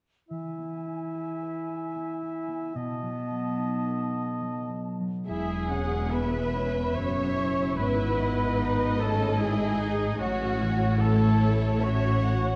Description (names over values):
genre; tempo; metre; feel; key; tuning
classical, slow romantic movement for symphony orchestra; 73 BPM; 3/4; uneven beats, rubato; E major; A4 = 436 Hz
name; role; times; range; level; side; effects
clear clarinet; second line; 0.3-4.9 s; B3 to E4; -36 LUFS; equal; none
mellow small flute group; second line; 0.3-12.6 s; F#5 to C#6; -41 LUFS; equal; none
warm oboe; second line; 0.3-12.6 s; F#4 to E5; -39 LUFS; equal; none
concert harp; arpeggios; 0.3-12.6 s; E2 to B4; -38 LUFS; equal; none
rich symphonic violin section; melody; 5.3-12.6 s; C#5 to F#5; -40 LUFS; equal; none
rich symphonic violin section; second line; 5.3-12.6 s; F#4 to C#5; -38 LUFS; equal; none
rich symphonic viola section; accompaniment; 5.3-12.6 s; B3 to F#4; -38 LUFS; equal; none
mellow French horn section; sustained chords; 5.3-12.6 s; F#3 to C#4; -35 LUFS; equal; none
clear trumpet section; stabs; 5.3-12.6 s; F#4 to C#5; -37 LUFS; equal; none
clear symphonic cello section; bass; 5.3-12.6 s; E2 to A2; -31 LUFS; equal; none
rich symphonic double bass section; bass; 5.3-12.6 s; E1 to A1; -33 LUFS; equal; none
room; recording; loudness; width
wet concert hall reverb, RT60 1.9 s; dark, warm production; -27 LUFS; mono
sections
0.3-5.3 A section; 5.3-12.6 B section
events
none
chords
0.3 E; 2.7 B7; 5.3 E; 7.8 E/G#; 10.2 F#m7/A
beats
| 0.29 1.14 1.96 | 2.75 3.56 4.41 | 5.28 6.13 6.97 | 7.79 8.60 9.41 | 10.21 11.02 11.82